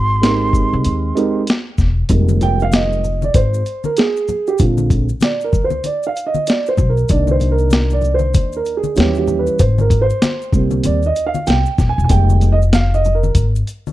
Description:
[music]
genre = hip hop, jazz-hop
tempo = 96 BPM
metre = 4/4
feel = swing 61% on 16ths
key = F dorian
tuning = A4 = 440 Hz
[part]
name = breathy mellow concert flute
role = melody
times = 0.0-1.5 s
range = C6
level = -21 LUFS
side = right 2 dB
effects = none
[part]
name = upright bass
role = bass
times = 0.0-13.6 s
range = Eb1 to Eb2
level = -16 LUFS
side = left 1 dB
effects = none
[part]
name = dark upright piano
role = accompaniment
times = 0.2-13.4 s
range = D3 to Ab5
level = -18 LUFS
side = right 4 dB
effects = none
[part]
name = boom bap sampler-style drum kit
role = drums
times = 0.2-13.8 s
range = hi-hat, kick drum, shaker, snare drum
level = -16 LUFS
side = left 1 dB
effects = none
[part]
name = maracas and congas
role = percussion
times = 2.1-13.9 s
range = none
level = -26 LUFS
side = left 7 dB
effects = none
[sound]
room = studio ambience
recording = dry, close 1970s-style studio recording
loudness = -13 LUFS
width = side -15 dB against mid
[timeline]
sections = 0.0-2.1 A section; 2.1-13.9 B section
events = upright piano solo 2.1-13.9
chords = 0.0 Abmaj7; 2.1 Fm11; 4.6 Bb7; 7.1 Cm9; 9.0 Eb7b9; 9.6 Abmaj7; 12.1 Fm11

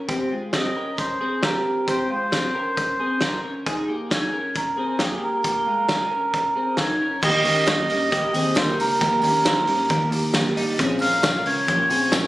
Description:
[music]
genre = jangly indie pop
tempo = 134 BPM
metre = 4/4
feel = straight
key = unclear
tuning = A4 = 440 Hz
[part]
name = twelve-string electric guitar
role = arpeggios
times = 0.0-12.3 s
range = G3 to C5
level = -27 LUFS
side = left 1 dB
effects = wide subtle chorus, digital delay
[part]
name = loose indie drum kit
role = drums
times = 0.1-12.2 s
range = crash cymbal, hi-hat, kick drum, ride cymbal, snare drum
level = -24 LUFS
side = equal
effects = none
[part]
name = melodica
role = melody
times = 0.6-12.3 s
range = Ab4 to F5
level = -23 LUFS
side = right 1 dB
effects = none
[part]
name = fingerpicked steel-string acoustic guitar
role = accompaniment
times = 7.2-12.3 s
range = Bb2 to G4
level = -27 LUFS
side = right 2 dB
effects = none
[part]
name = vintage muted picked electric bass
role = bass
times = 7.2-12.3 s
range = Ab1 to G2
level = -30 LUFS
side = equal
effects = none
[part]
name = tambourine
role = percussion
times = 7.2-12.2 s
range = none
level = -38 LUFS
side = right 1 dB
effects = none
[sound]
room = moderate studio reverb, RT60 0.6 s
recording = recorded on a phone in the room, studio reverb, compression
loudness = -19 LUFS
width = side -16 dB against mid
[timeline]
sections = 0.0-7.2 A section; 7.2-12.3 B section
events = none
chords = 0.1 Absus2; 7.2 Eb; 10.8 Bbmadd9

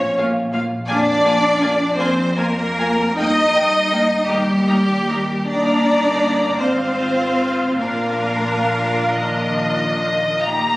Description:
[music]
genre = classical, slow romantic movement for string orchestra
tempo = 43-57 BPM (dotted quarters)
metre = 6/8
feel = rubato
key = unclear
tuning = A4 = 439 Hz
[part]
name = rich studio violin section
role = second line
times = 0.0-10.8 s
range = Eb4 to Eb5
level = -20 LUFS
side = left 1 dB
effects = none
[part]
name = dark symphonic double bass section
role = bass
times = 0.0-10.8 s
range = G1 to G2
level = -26 LUFS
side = equal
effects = none
[part]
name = warm symphonic cello section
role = bass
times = 0.0-10.8 s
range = Eb3 to Eb4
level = -21 LUFS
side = equal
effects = none
[part]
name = rich symphonic violin section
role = melody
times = 0.2-10.8 s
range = Eb5 to Bb5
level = -24 LUFS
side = left 1 dB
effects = none
[part]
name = rich symphonic viola section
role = accompaniment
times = 0.2-10.2 s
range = Bb3 to F4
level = -24 LUFS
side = equal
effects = none
[sound]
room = wet scoring stage reverb, RT60 1.5 s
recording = recorded on a phone in the room, club reverb, compression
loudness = -16 LUFS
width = side -19 dB against mid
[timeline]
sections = 0.0-10.5 A section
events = none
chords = 0.0 Bbm; 0.9 Bb/F; 3.2 Eb/G; 4.3 Eb; 5.5 Eb/G; 6.6 Fm/Ab; 7.8 Bb

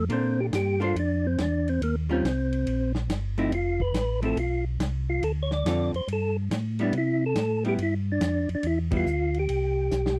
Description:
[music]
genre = soul jazz organ trio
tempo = 141 BPM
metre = 4/4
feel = swing 66% on 8ths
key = C major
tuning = A4 = 440 Hz
[part]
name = percussive tonewheel organ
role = melody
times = 0.0-10.2 s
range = Bb3 to D5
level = -29 LUFS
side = equal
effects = chorus vibrato, fast rotary speaker
[part]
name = mellow tonewheel organ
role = bass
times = 0.0-10.2 s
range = F1 to C3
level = -30 LUFS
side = equal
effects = chorus vibrato, slow rotary speaker
[part]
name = archtop guitar, miked and amplified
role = accompaniment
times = 0.1-9.1 s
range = D3 to C5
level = -32 LUFS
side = equal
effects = none
[part]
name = warm soul drum kit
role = drums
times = 0.1-10.2 s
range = hi-hat, kick drum, ride cymbal, snare drum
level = -35 LUFS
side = equal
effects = none
[sound]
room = little or no reverb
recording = dry, close 1970s-style studio recording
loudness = -27 LUFS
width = mono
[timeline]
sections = 0.0-10.2 A section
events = band accent 8.9; drum fill 9.9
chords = 0.1 Bbmaj9; 1.8 Ebadd9; 3.5 F; 5.2 Dm7; 6.1 Gadd9; 6.9 Cmaj7

